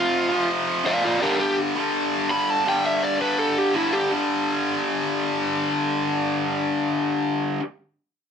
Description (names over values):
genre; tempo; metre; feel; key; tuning
punk; 167 BPM; 4/4; straight; unclear; A4 = 440 Hz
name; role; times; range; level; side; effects
crunchy overdriven guitar; melody; 0.0-4.1 s; E4 to B5; -22 LUFS; right 1 dB; none
tight distorted guitar; riff; 0.0-7.6 s; F2 to G3; -22 LUFS; left 1 dB; distortion
room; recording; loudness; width
moderate studio reverb, RT60 0.5 s; none; -20 LUFS; side -7 dB against mid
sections
0.0-4.1 A section; 4.1-7.0 B section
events
overdriven electric guitar solo 0.0-4.1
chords
0.0 F5; 1.2 G5